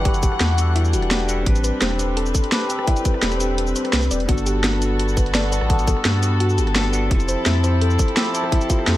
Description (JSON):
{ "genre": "liquid drum and bass", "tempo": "170 BPM", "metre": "4/4", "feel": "straight", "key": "G major", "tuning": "A4 = 440 Hz", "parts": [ { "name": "bell-like tine electric piano", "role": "accompaniment", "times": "0.0-9.0 s", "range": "B3 to B4", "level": "-25 LUFS", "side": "equal", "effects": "phaser, digital delay" }, { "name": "warm studio string section", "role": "sustained chords", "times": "0.0-9.0 s", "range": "E3 to F#5", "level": "-26 LUFS", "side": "left 2 dB", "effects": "sidechain pumping" }, { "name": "thumb-piano-like synth pluck", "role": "arpeggios", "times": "0.0-8.9 s", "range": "E4 to E5", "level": "-29 LUFS", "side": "left 2 dB", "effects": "chorus, digital delay" }, { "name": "saturated sub bass", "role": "bass", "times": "0.0-9.0 s", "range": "E1 to G2", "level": "-21 LUFS", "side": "equal", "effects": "none" }, { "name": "drum and bass drum kit", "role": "drums", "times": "0.1-8.9 s", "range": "cabasa, hi-hat, rim click, snare drum", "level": "-23 LUFS", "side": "equal", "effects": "none" }, { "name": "electronic kick drum", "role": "drums", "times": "0.1-8.8 s", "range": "none", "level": "-19 LUFS", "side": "equal", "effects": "none" } ], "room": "digital ambience", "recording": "none", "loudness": "-17 LUFS", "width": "side -15 dB against mid", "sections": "0.0-9.0 A section", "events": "none", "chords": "0.0 Em9; 1.5 Am11; 4.3 Gmaj9; 7.1 Fmaj7" }